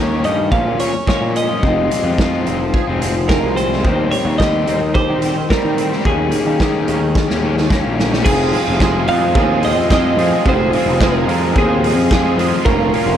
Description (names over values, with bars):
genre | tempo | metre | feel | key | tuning
indie rock | 109 BPM | 4/4 | straight | F minor | A4 = 439 Hz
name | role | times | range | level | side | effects
twelve-string electric guitar | melody | 0.0-13.2 s | Ab4 to F5 | -20 LUFS | right 2 dB | slapback echo
crunchy overdriven guitar | riff | 0.0-13.2 s | Bb2 to Db5 | -21 LUFS | left 9 dB | none
distorted electric guitar | riff | 0.0-13.2 s | F2 to Ab4 | -24 LUFS | right 10 dB | overdrive, ensemble chorus, slapback echo
fuzz picked electric bass | bass | 0.0-13.2 s | F1 to Eb3 | -19 LUFS | equal | overdrive
raw garage drum kit | drums | 0.2-13.1 s | crash cymbal, hi-hat, kick drum, snare drum | -19 LUFS | right 1 dB | none
combo organ | sustained chords | 8.2-13.2 s | Db4 to Eb6 | -32 LUFS | left 2 dB | none
room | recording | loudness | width
little or no reverb | none | -13 LUFS | side -10 dB against mid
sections
0.0-8.3 A section; 8.3-13.2 B section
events
drum fill 7.2-8.3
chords
0.0 Eb7; 0.5 Bbm7; 1.6 Fm7; 3.8 Cm/Eb; 6.1 Eb7sus4; 8.3 Fm7; 12.7 Bbmadd9/F